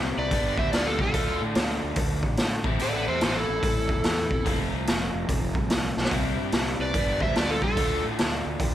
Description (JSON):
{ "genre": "blues rock power trio and southern rock", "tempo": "145 BPM", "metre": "4/4", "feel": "swing 64% on 8ths", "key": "unclear", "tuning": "A4 = 440 Hz", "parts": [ { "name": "crunchy overdriven guitar", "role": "riff", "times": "0.0-8.7 s", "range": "G2 to G4", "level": "-30 LUFS", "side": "left 1 dB", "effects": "spring reverb" }, { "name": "fuzz fingered electric bass", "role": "bass", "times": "0.0-8.7 s", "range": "E1 to A2", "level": "-31 LUFS", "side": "equal", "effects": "overdrive" }, { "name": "overdriven slide guitar", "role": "melody", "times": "0.2-8.0 s", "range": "G4 to E5", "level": "-29 LUFS", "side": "equal", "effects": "tape echo" }, { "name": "biting lead guitar", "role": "second line", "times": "0.2-8.0 s", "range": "E4 to C5", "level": "-37 LUFS", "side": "right 3 dB", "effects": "overdrive, tape echo" }, { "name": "raw garage drum kit", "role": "drums", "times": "0.3-8.7 s", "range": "hi-hat, kick drum, snare drum", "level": "-26 LUFS", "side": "equal", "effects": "none" } ], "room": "light reverb", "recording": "none", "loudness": "-23 LUFS", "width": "side -12 dB against mid", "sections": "0.0-8.7 A section", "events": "drum fill 5.9", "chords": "0.3 G; 1.1 Dm; 2.6 Am; 4.5 F; 6.1 C; 6.9 G; 7.8 Dm", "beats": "0.31 0.72 | 1.14 1.55 1.97 2.38 | 2.80 3.21 3.63 4.04 | 4.46 4.87 5.29 5.70 | 6.12 6.53 6.95 7.36 | 7.77 8.19 8.60" }